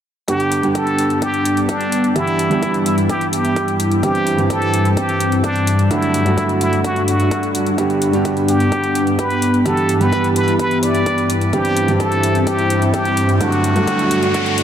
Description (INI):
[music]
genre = EDM, festival progressive house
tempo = 128 BPM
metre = 4/4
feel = straight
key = G major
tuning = A4 = 440 Hz
[part]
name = trumpet with plunger mute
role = melody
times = 0.3-14.6 s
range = D4 to D5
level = -20 LUFS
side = equal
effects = tape echo
[part]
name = warm grand piano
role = accompaniment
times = 0.3-14.6 s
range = G2 to G4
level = -19 LUFS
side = right 2 dB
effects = sidechain pumping, tape echo
[part]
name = lush unison pad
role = sustained chords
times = 1.0-14.6 s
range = G2 to F#4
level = -18 LUFS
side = left 1 dB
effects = chorus, sidechain pumping
[part]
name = electronic hi-hat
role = drums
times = 0.3-14.6 s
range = none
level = -28 LUFS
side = left 2 dB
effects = none
[part]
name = electronic kick drum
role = drums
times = 0.3-14.4 s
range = none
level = -28 LUFS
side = left 1 dB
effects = none
[part]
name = riser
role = sound effects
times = 12.9-14.6 s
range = none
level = -27 LUFS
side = left 1 dB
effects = none
[sound]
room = wet huge ambient reverb, RT60 7.5 s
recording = dreamy mix soaked in reverb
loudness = -14 LUFS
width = side -9 dB against mid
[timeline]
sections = 0.3-14.6 A section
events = filter sweep on analog synth pad 0.3-14.6; riser 12.9-14.6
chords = 0.3 G; 2.2 Em/G; 4.0 C/G; 5.9 D/G; 7.8 G; 9.7 Em/G; 11.5 C/G; 13.4 D/G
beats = | 0.28 0.75 1.22 1.69 | 2.16 2.63 3.10 3.56 | 4.03 4.50 4.97 5.44 | 5.91 6.38 6.84 7.31 | 7.78 8.25 8.72 9.19 | 9.66 10.13 10.60 11.06 | 11.53 12.00 12.47 12.94 | 13.41 13.88 14.35